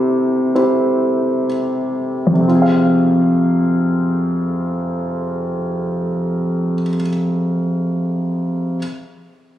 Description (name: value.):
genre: pop.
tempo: free time.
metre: none.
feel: none.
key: F harmonic minor.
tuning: A4 = 435 Hz.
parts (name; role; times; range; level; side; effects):
warm concert grand piano; accompaniment; 0.0-8.8 s; F2 to F5; -15 LUFS; equal; none.
room: light reverb.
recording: recorded on a phone in the room, studio reverb, compression.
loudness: -15 LUFS.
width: side -12 dB against mid.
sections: 0.0-2.4 A section; 2.4-6.3 B section.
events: slowing down 0.0-2.4.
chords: 0.0 C; 2.4 Fm.